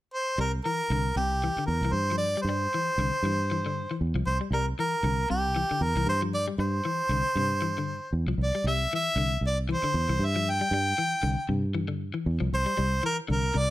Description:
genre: afrobeat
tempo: 116 BPM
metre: 4/4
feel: swing 56% on 16ths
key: C mixolydian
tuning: A4 = 440 Hz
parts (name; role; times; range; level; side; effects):
- clear harmonica; melody; 0.1-13.7 s; G4 to G5; -28 LUFS; equal; none
- electric guitar at the edge of break-up; arpeggios; 0.4-13.7 s; C3 to G3; -33 LUFS; left 5 dB; none
- fingered electric bass; bass; 0.4-13.7 s; C2 to G2; -28 LUFS; right 1 dB; none
room: light reverb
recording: none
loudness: -25 LUFS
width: side -15 dB against mid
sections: 0.4-13.7 A section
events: none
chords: 0.4 C

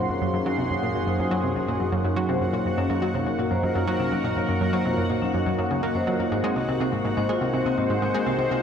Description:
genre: ambient, sequencer-driven space music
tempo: 123 BPM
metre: 4/4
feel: straight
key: Gb lydian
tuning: A4 = 440 Hz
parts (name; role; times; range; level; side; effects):
- sweeping resonant pad; sustained chords; 0.0-8.6 s; Gb2 to C6; -26 LUFS; equal; chorus
- vibraphone with medium mallets; arpeggios; 0.0-8.6 s; C4 to Db5; -30 LUFS; left 4 dB; auto-pan, low-pass filter, ping-pong delay
- analog pluck; riff; 0.0-8.6 s; Gb2 to Bb3; -26 LUFS; right 1 dB; chorus, ping-pong delay
- bubbling stepped-filter texture; texture; 0.0-8.6 s; Gb4 to Gb5; -32 LUFS; equal; chorus, built-in reverb
room: wet spring reverb, RT60 2.6 s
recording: echo-heavy mix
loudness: -22 LUFS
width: side -7 dB against mid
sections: 0.0-8.6 A section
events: filter sweep on vibraphone 0.0-8.6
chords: 0.0 Gbadd9; 6.3 Ab7

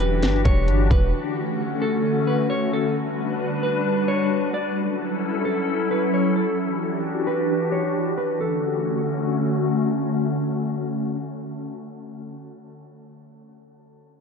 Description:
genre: hip hop, atmospheric cloud-rap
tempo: 132 BPM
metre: 4/4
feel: half-time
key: D major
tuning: A4 = 440 Hz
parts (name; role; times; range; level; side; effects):
- clean electric guitar; melody; 0.0-9.7 s; A4 to D5; -28 LUFS; equal; tape echo
- glassy FM pad; sustained chords; 0.0-11.8 s; D3 to B4; -23 LUFS; left 1 dB; ensemble chorus, built-in reverb, sidechain pumping
- warm 808-style bass; bass; 0.0-1.1 s; E1 to G1; -20 LUFS; equal; none
- trap drum kit; drums; 0.0-1.0 s; hi-hat, kick drum, snare drum; -20 LUFS; equal; none
room: light reverb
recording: dark, warm production, low-pass filter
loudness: -20 LUFS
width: side -6 dB against mid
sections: 0.0-8.4 A section; 8.4-12.0 B section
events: none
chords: 0.0 Em9; 1.1 Dmaj7; 3.0 Gmaj7; 4.8 F#m7; 6.6 Em9; 8.4 Dmaj7

